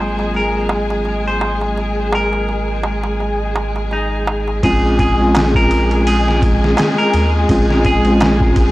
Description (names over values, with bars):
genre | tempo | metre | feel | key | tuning
trip hop | 84 BPM | 4/4 | swing 56% on 16ths | Bb minor | A4 = 440 Hz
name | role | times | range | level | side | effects
clean electric guitar | melody | 0.0-8.5 s | Eb4 to C5 | -22 LUFS | equal | dub echo
bell-like tine electric piano | accompaniment | 0.0-8.7 s | Gb3 to F4 | -20 LUFS | equal | tremolo
warm symphonic string section | sustained chords | 0.0-8.7 s | Ab3 to Ab4 | -20 LUFS | left 1 dB | none
soft dub sub bass | bass | 0.0-8.7 s | Ab1 to Eb2 | -19 LUFS | equal | tube saturation
bowed-like drone | texture | 0.0-4.7 s | Ab4 | -31 LUFS | right 6 dB | none
darbuka | percussion | 0.2-8.4 s | none | -23 LUFS | right 2 dB | none
trip hop sampler-style drum kit | drums | 4.6-8.7 s | kick drum, ride cymbal, snare drum | -18 LUFS | equal | overdrive
room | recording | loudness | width
digital ambience | dry, gritty hardware recording, transformer saturation | -13 LUFS | side -17 dB against mid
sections
0.0-4.6 A section; 4.6-8.7 B section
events
none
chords
0.0 Ab13; 4.6 Bbm7